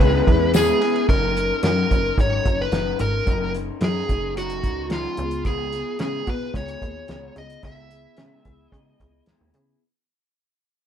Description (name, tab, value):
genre	indie pop, bedroom pop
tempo	110 BPM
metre	4/4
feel	straight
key	F# major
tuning	A4 = 440 Hz
part	overdriven slide guitar	melody	0.0-9.2 s	E#4 to E5	-24 LUFS	equal	none
part	electric guitar through a small old amp	accompaniment	0.0-9.8 s	C#3 to A#4	-28 LUFS	left 4 dB	vibrato effect
part	warm analog keys	accompaniment	0.0-1.1 s	G#3 to B4	-29 LUFS	right 4 dB	none
part	plucky analog bass	bass	0.0-9.8 s	F#1 to C#3	-26 LUFS	equal	none
part	cloth-damped thuddy drum kit	drums	0.0-9.7 s	hi-hat, kick drum, ride cymbal, snare drum	-22 LUFS	equal	none
part	tambourine	percussion	0.5-0.7 s	none	-32 LUFS	left 4 dB	none
room	moderate studio reverb, RT60 0.7 s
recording	band playing live in one room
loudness	-19 LUFS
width	side -9 dB against mid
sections	0.0-1.1 A section; 1.1-9.8 B section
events	fade-out 1.1-9.8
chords	0.0 C#m7; 1.1 F#6; 5.2 C#7; 7.6 C#m7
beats	0.00 0.54 | 1.09 1.63 2.18 2.72 | 3.27 3.81 4.36 4.91 | 5.45 6.00 6.54 7.09 | 7.63 8.18 8.72 9.27